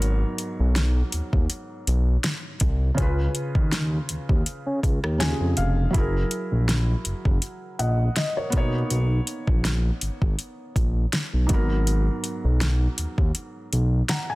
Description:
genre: contemporary R&B.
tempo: 81 BPM.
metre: 4/4.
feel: swing 54% on 16ths.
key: G# minor.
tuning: A4 = 440 Hz.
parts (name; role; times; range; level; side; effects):
felt-muted upright piano; accompaniment; 0.0-14.3 s; G#2 to A#5; -30 LUFS; equal; none.
smooth synth bass; bass; 0.0-14.0 s; E#1 to C#3; -22 LUFS; equal; none.
smooth R&B drum kit; drums; 0.0-14.3 s; hi-hat, kick drum, rim click, snare drum; -24 LUFS; equal; overdrive.
room: digital ambience.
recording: dense, heavily limited modern master.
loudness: -21 LUFS.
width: side -21 dB against mid.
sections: 0.0-14.3 A section.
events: felt piano fill 4.8-5.9.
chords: 0.0 G#m9; 3.0 C#7; 5.9 F#9; 8.5 Bmaj9; 11.5 G#m9.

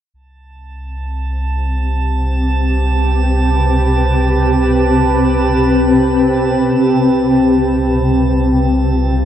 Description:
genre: ambient.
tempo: free time.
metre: none.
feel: none.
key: unclear.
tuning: A4 = 440 Hz.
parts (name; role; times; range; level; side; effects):
shimmering ambient pad; sustained chords; 1.9-9.2 s; C3 to B4; -13 LUFS; left 1 dB; chorus, built-in reverb.
warm sub bass; bass; 0.1-9.2 s; C2; -17 LUFS; equal; none.
drifting glass-harmonics texture; texture; 1.0-9.2 s; A5; -23 LUFS; right 7 dB; chorus, built-in reverb.
room: wet concert hall reverb, RT60 2.3 s.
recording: none.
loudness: -12 LUFS.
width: side -10 dB against mid.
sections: 0.1-9.2 A section.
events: fade-out on synth texture 0.1-9.2; filter sweep on ambient pad 0.1-9.2.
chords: 0.1 Am7/C; 6.7 G7sus4/C.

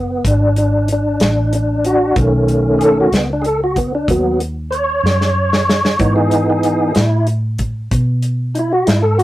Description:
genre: slow blues.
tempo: 63 BPM (dotted quarters).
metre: 12/8.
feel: straight.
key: B mixolydian.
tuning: A4 = 440 Hz.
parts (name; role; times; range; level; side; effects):
tonewheel organ; sustained chords; 0.0-9.2 s; D#3 to C#5; -15 LUFS; equal; slow rotary speaker, chorus vibrato.
vintage muted fingered electric bass; bass; 0.0-9.2 s; F#1 to B2; -18 LUFS; equal; none.
warm soul drum kit; drums; 0.2-9.2 s; hi-hat, kick drum, snare drum; -18 LUFS; equal; none.
room: light reverb.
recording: rough rehearsal-room recording.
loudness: -13 LUFS.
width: side -16 dB against mid.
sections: 0.0-9.2 A section.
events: tonewheel organ solo 0.0-9.2; drum fill 5.0-6.0.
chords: 0.0 B7; 6.0 G#m.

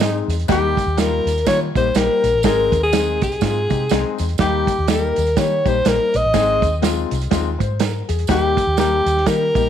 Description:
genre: uptempo 1960s-style soul.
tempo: 123 BPM.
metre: 4/4.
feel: swing 59% on 8ths.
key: Eb major.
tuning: A4 = 440 Hz.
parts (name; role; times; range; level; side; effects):
clear alto saxophone; melody; 0.0-9.7 s; Eb4 to Eb5; -18 LUFS; equal; slapback echo.
warm baby grand piano; accompaniment; 0.0-9.7 s; G3 to C5; -23 LUFS; left 14 dB; none.
vintage muted fingered electric bass; bass; 0.0-9.7 s; Ab1 to Eb3; -22 LUFS; equal; none.
vintage drum kit; drums; 0.0-9.6 s; hi-hat, kick drum, snare drum; -22 LUFS; right 6 dB; none.
tambourine; percussion; 0.3-9.6 s; none; -35 LUFS; right 13 dB; none.
room: light reverb, small room ambience.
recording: 1960s-style stereo with parts hard left and right.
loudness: -15 LUFS.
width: side -9 dB against mid.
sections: 0.0-9.7 A section.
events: none.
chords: 0.5 Eb; 2.4 Ab; 4.4 Eb; 6.3 Ab; 8.3 Eb.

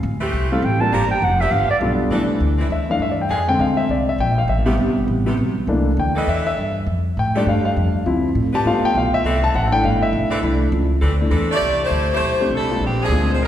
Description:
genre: jazz, big band swing.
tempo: 202 BPM.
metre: 4/4.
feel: swing 61% on 8ths.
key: C major.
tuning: A4 = 439 Hz.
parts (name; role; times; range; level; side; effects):
upright bass; bass; 0.0-13.5 s; F1 to A2; -21 LUFS; equal; none.
clear saxophone section; sustained chords; 0.2-11.6 s; C3 to A4; -28 LUFS; equal; none.
breathy clarinet; melody; 0.5-1.8 s; D5 to Bb5; -21 LUFS; right 2 dB; none.
warm grand piano; accompaniment; 0.5-13.5 s; C3 to A5; -20 LUFS; left 1 dB; none.
clear saxophone section; melody; 11.5-13.5 s; E3 to D5; -19 LUFS; equal; none.
room: wet concert hall reverb, RT60 1.8 s.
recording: recorded in a church or concert hall.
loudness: -16 LUFS.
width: side -11 dB against mid.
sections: 0.0-2.1 A section; 2.1-11.6 A section; 11.6-13.5 B section.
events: clarinet solo 0.0-2.1; grand piano solo 2.1-11.6.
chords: 0.0 Am7; 0.9 Gm7; 1.5 G7; 2.1 C69; 3.3 Bb9; 4.5 Am9; 5.7 C13; 6.9 F69; 8.1 Dm7; 8.7 G7; 9.2 C69; 12.8 Bb9.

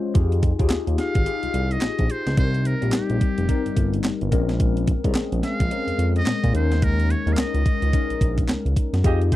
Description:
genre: R&B, new jack swing.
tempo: 108 BPM.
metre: 4/4.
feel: swing 61% on 16ths.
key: F minor.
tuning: A4 = 441 Hz.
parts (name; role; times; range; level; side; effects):
bell-like tine electric piano; accompaniment; 0.0-9.4 s; G3 to C5; -26 LUFS; left 5 dB; phaser.
crisp 8-bit digital drum machine; drums; 0.1-9.4 s; handclaps, hi-hat, kick drum, snare drum; -22 LUFS; equal; overdrive.
smooth synth bass; bass; 0.2-9.4 s; F1 to Bb2; -23 LUFS; equal; none.
trumpet with metal mute; melody; 1.0-9.4 s; G4 to F5; -29 LUFS; right 2 dB; tube saturation, slapback echo.
dark horn section; stabs; 9.0-9.4 s; F4 to Eb5; -28 LUFS; right 4 dB; none.
room: little or no reverb.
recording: dry, close 1970s-style studio recording.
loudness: -19 LUFS.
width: side -15 dB against mid.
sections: 0.2-9.4 A section.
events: break 0.0.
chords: 0.2 Fm9; 2.4 Cm7; 4.3 Bbm9; 6.5 Eb7sus4.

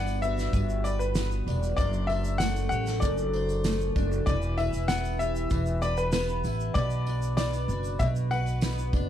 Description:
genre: acoustic pop.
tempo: 96 BPM.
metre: 4/4.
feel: straight.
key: G major.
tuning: A4 = 441 Hz.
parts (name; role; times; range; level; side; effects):
bright upright piano; melody; 0.0-8.9 s; B4 to F#5; -32 LUFS; left 3 dB; none.
picked steel-string acoustic guitar; accompaniment; 0.0-9.1 s; F#2 to C5; -31 LUFS; equal; double-tracked left and right.
upright bass; bass; 0.0-9.1 s; E1 to B1; -29 LUFS; equal; none.
loose indie drum kit; drums; 0.1-9.1 s; kick drum, shaker, snare drum; -32 LUFS; equal; none.
tambourine; percussion; 0.1-9.1 s; none; -49 LUFS; right 10 dB; none.
room: light reverb.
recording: none.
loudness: -25 LUFS.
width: side -10 dB against mid.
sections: 0.0-9.1 A section.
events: none.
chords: 0.0 Gmaj7; 1.8 D7/F#; 4.3 Em; 6.8 Bm.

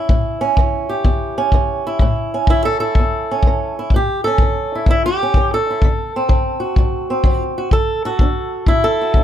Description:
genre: acoustic country blues, solo or duo.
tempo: 126 BPM.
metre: 4/4.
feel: swing 66% on 8ths.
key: A mixolydian.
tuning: A4 = 440 Hz.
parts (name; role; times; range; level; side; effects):
fingerpicked swing-style acoustic guitar; melody; 0.0-9.2 s; E2 to A4; -18 LUFS; right 2 dB; none.
kick drum; drums; 0.1-9.2 s; none; -16 LUFS; left 1 dB; none.
room: light reverb.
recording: none.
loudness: -14 LUFS.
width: side -10 dB against mid.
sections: 0.0-9.2 A section.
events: none.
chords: 0.0 A7; 5.8 D7.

